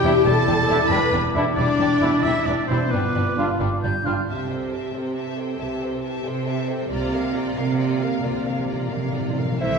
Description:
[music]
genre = cinematic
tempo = 90 BPM (dotted quarters)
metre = 6/8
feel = straight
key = C mixolydian from 4.3 s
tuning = A4 = 439 Hz
[part]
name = warm symphonic violin section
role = melody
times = 0.0-9.8 s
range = B4 to B5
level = -33 LUFS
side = left 2 dB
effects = none
[part]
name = clear clarinet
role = second line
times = 0.0-4.0, 9.6-9.8 s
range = E4 to C5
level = -30 LUFS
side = equal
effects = none
[part]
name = concert flute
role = second line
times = 0.0-4.3, 9.6-9.8 s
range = E5 to G6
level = -29 LUFS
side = left 2 dB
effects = none
[part]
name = warm symphonic viola section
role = accompaniment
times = 0.0-9.6 s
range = B3 to B4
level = -29 LUFS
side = equal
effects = none
[part]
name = mellow French horn section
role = sustained chords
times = 0.0-9.8 s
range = D3 to C5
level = -28 LUFS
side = left 4 dB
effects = none
[part]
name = dark trumpet section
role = stabs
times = 0.0-4.1, 9.6-9.8 s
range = E4 to E5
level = -29 LUFS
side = right 2 dB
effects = none
[part]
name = rich symphonic cello section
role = bass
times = 0.0-9.8 s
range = E2 to E3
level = -26 LUFS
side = right 3 dB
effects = none
[part]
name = warm symphonic double bass section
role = bass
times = 0.0-9.8 s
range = E1 to C2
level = -28 LUFS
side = right 2 dB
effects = none
[part]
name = warm symphonic violin section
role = second line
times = 0.1-9.8 s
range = G3 to F5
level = -31 LUFS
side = left 4 dB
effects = none
[part]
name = warm trombone section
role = sustained chords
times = 0.1-4.1, 9.6-9.8 s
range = B2 to D4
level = -31 LUFS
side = right 2 dB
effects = none
[part]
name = clear oboe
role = second line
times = 0.3-3.6, 9.6-9.8 s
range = E4 to B5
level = -26 LUFS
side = equal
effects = none
[part]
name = timpani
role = percussion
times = 6.9-9.6 s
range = C3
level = -30 LUFS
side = equal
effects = none
[sound]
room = wet concert hall reverb, RT60 1.8 s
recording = recorded in a church or concert hall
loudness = -20 LUFS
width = side -5 dB against mid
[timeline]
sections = 0.0-4.3 A section; 4.3-9.6 B section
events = timpani fill 6.9-9.6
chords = 0.0 Em7; 2.9 G7; 4.3 C6; 6.9 Bb/C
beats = | 0.26 0.91 | 1.57 2.24 | 2.92 3.60 | 4.28 4.94 | 5.59 6.25 | 6.90 7.56 | 8.24 8.92 | 9.60

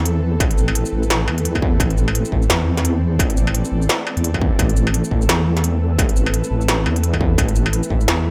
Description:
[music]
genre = half-time drum and bass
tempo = 172 BPM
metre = 4/4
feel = swing 58% on 16ths, half-time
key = A minor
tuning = A4 = 440 Hz
[part]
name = bowed-like drone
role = sustained chords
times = 0.0-8.3 s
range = E3 to E5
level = -30 LUFS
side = equal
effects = built-in reverb, sidechain pumping
[part]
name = deep soft wobble bass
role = bass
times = 0.0-8.3 s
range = A1 to E2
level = -21 LUFS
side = equal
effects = chorus
[part]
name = flickering grainy texture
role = texture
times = 0.1-8.3 s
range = A3 to A4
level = -33 LUFS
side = equal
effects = none
[part]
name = industrial drum kit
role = drums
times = 0.1-8.2 s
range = hi-hat, shaker, snare drum, struck metal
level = -24 LUFS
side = equal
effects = none
[part]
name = electronic kick drum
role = drums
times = 0.4-8.0 s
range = none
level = -22 LUFS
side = equal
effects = distortion
[sound]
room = light reverb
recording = none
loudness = -18 LUFS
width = mono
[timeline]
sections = 0.0-8.3 A section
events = none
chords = 0.0 Amadd9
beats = 0.06 | 0.40 0.75 1.10 1.45 | 1.80 2.15 2.50 2.85 | 3.19 3.54 3.89 4.24 | 4.59 4.94 5.29 5.64 | 5.99 6.33 6.68 7.03 | 7.38 7.73 8.08

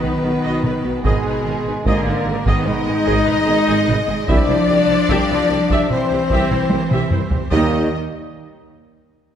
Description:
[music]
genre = cinematic, epic orchestral film score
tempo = 74 BPM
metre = 4/4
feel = straight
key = Eb major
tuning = A4 = 442 Hz
[part]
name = dark symphonic violin section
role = melody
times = 0.0-8.0 s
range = Ab4 to Eb5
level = -27 LUFS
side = left 5 dB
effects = none
[part]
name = clear symphonic violin section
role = second line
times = 0.0-8.0 s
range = Ab4 to Eb5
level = -26 LUFS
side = left 3 dB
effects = none
[part]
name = warm symphonic viola section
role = accompaniment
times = 0.0-8.0 s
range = B3 to E5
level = -26 LUFS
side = right 2 dB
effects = none
[part]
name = mellow French horn section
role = sustained chords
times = 0.0-7.9 s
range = Ab3 to Eb4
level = -21 LUFS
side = left 4 dB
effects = none
[part]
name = clear symphonic cello section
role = bass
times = 0.0-8.0 s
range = Cb3 to Ab3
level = -23 LUFS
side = right 3 dB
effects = none
[part]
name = rich symphonic double bass section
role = bass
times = 0.0-8.0 s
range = Ab1 to Eb2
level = -25 LUFS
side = right 3 dB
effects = none
[part]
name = taiko ensemble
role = drums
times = 0.0-7.7 s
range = none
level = -22 LUFS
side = equal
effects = none
[part]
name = warm tuba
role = bass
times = 0.2-7.9 s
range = Ab1 to Eb2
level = -27 LUFS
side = right 4 dB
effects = none
[part]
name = clear trombone section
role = sustained chords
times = 1.0-7.9 s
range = Eb3 to E4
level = -30 LUFS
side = right 3 dB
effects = none
[sound]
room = moderate scoring stage reverb, RT60 1.9 s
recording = none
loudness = -15 LUFS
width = side -9 dB against mid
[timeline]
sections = 0.0-7.5 A section; 7.5-9.4 B section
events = drum fill 6.7-7.5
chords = 0.0 B; 1.0 Abm; 4.3 C; 7.5 Eb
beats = 0.23 | 1.04 1.85 2.66 3.47 | 4.28 5.09 5.90 6.71 | 7.52

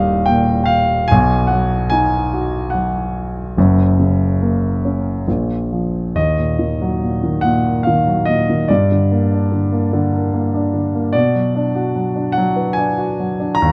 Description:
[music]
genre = classical, lyrical solo piano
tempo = 73 BPM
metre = 3/4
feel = rubato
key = Eb harmonic minor from 6.2 s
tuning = A4 = 440 Hz
[part]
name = warm grand piano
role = solo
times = 0.0-13.7 s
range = D#1 to Bb5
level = -17 LUFS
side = equal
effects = none
[sound]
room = light reverb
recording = close, detailed microphones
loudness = -17 LUFS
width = mono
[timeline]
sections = 0.0-6.2 A section; 6.2-13.7 B section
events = none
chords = 0.0 D#; 1.1 B; 3.6 F#; 5.3 A#5; 6.2 Ebm; 8.7 Gm; 11.1 Bm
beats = 0.29 | 1.11 1.92 2.74 | 3.57 4.41 5.27 | 6.16 7.02 7.86 | 8.70 9.52 10.33 | 11.15 11.96 12.77 | 13.60

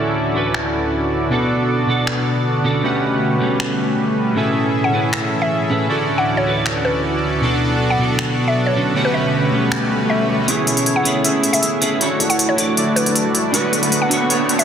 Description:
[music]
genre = future bass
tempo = 157 BPM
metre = 4/4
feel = half-time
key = A major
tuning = A4 = 440 Hz
[part]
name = clean electric guitar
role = accompaniment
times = 0.0-14.6 s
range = A2 to G#5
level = -21 LUFS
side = right 1 dB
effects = ensemble chorus, dub echo
[part]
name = ethereal airy pad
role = sustained chords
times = 0.0-14.6 s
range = D2 to G#5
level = -25 LUFS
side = equal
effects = ensemble chorus, built-in reverb
[part]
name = soft supersaw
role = riff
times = 0.0-14.6 s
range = B2 to E5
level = -19 LUFS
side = equal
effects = low-pass filter, dub echo
[part]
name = big-room dance drum kit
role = drums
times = 0.5-14.6 s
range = finger snaps, hi-hat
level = -22 LUFS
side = equal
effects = soft clipping on snare, low-pass filter on snare, low-pass filter on hats, low-pass filter on room
[part]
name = mallet-like synth pluck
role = melody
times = 4.8-14.6 s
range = B4 to F#5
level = -23 LUFS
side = equal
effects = chorus, dub echo
[part]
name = swell and riser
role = sound effects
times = 9.9-14.6 s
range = none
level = -27 LUFS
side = equal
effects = none
[part]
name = long sustained 808-style bass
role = bass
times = 10.5-14.6 s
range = E1 to F#2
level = -34 LUFS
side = left 1 dB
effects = none
[sound]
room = wet lush hall reverb, RT60 2.7 s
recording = dense, heavily limited modern master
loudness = -15 LUFS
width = side -8 dB against mid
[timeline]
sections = 0.0-10.5 A section; 10.5-14.6 B section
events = filter sweep on supersaw synth 0.0-10.5; swell 9.9-10.5; build-up 10.5-14.6; riser 10.5-14.6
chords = 0.0 Dmaj9; 1.3 Bm7; 2.8 Gmaj9#11/B; 4.4 Amaj7; 5.9 Dmaj9; 7.4 Bm7; 9.0 Gmaj9#11/B; 10.5 Amaj7; 12.0 Dmaj9; 13.5 Bm7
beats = 0.16 0.54 0.93 | 1.31 1.69 2.07 2.45 | 2.84 3.22 3.60 3.98 | 4.37 4.75 5.13 5.51 | 5.89 6.28 6.66 7.04 | 7.42 7.80 8.19 8.57 | 8.95 9.33 9.72 10.10 | 10.48 10.86 11.24 11.63 | 12.01 12.39 12.77 13.15 | 13.54 13.92 14.30

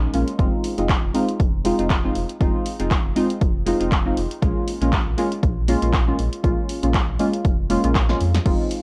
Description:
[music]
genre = deep house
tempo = 119 BPM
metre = 4/4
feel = swing 55% on 16ths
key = unclear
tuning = A4 = 437 Hz
[part]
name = deep mellow chord stab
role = stabs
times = 0.0-8.8 s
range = Ab3 to F4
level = -25 LUFS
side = equal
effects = chorus, sidechain pumping, analog delay
[part]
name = sub bass with octave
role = bass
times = 0.0-8.6 s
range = F1 to F2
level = -27 LUFS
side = equal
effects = sidechain pumping
[part]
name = punchy analog drum machine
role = drums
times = 0.1-8.8 s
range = crash cymbal, handclaps, hi-hat, snare drum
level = -31 LUFS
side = equal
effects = none
[part]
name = electronic kick drum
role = drums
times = 0.4-8.6 s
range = none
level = -24 LUFS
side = equal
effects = overdrive
[sound]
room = little or no reverb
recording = cassette tape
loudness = -21 LUFS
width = mono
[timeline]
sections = 0.0-8.8 A section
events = drum fill 8.0-8.5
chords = 0.4 Fm7; 4.4 Bbm7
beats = | 0.39 0.89 1.40 1.90 | 2.41 2.91 3.41 3.92 | 4.42 4.93 5.43 5.93 | 6.44 6.94 7.45 7.95 | 8.46

